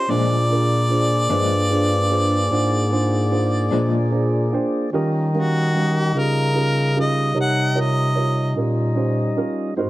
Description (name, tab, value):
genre	slow blues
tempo	50 BPM (dotted quarters)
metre	12/8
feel	straight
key	unclear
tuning	A4 = 440 Hz
part	warm harmonica	melody	0.0-8.6 s	Gb4 to Gb5	-22 LUFS	equal	none
part	tonewheel organ	sustained chords	0.0-9.9 s	G3 to Eb5	-27 LUFS	left 1 dB	slow rotary speaker
part	dark upright piano	accompaniment	0.1-9.9 s	G3 to Bb5	-24 LUFS	right 3 dB	none
part	electric guitar through a small old amp	accompaniment	0.1-4.0 s	Bb2 to D4	-25 LUFS	left 5 dB	tremolo
part	mellow bass clarinet	bass	0.1-9.9 s	G2 to Eb3	-20 LUFS	equal	none
room	studio reverb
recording	dry, close 1970s-style studio recording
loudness	-17 LUFS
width	side -17 dB against mid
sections	0.0-4.9 A section; 4.9-9.9 B section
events	upright piano fill 3.7-4.9; harmonica solo 4.9-9.9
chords	0.1 Bb7; 4.9 Eb7